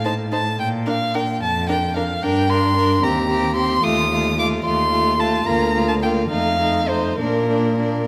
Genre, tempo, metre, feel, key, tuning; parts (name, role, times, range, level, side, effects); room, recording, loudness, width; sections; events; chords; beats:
quick classical-period movement for string quartet; 68-75 BPM (dotted quarters); 6/8; rubato; Bb major; A4 = 438 Hz
rich violin; melody; 0.0-8.1 s; Bb4 to Eb6; -23 LUFS; equal
clear violin; second line; 0.0-8.1 s; D4 to C5; -27 LUFS; equal
rich cello; bass; 0.0-8.0 s; D2 to Bb2; -26 LUFS; equal
warm viola; accompaniment; 0.1-8.1 s; A3 to Eb4; -26 LUFS; equal
moderate concert hall reverb, RT60 2.4 s; -19 LUFS; mono
0.0-8.1 A section
0.0 Adim; 0.6 Bb; 2.2 Gm; 3.0 Cm7/Eb; 3.8 F7/Eb; 5.5 Bb/D; 6.3 F7; 7.2 Bb
| 0.58 1.41 | 2.22 3.03 | 3.84 4.65 | 5.47 6.31 | 7.19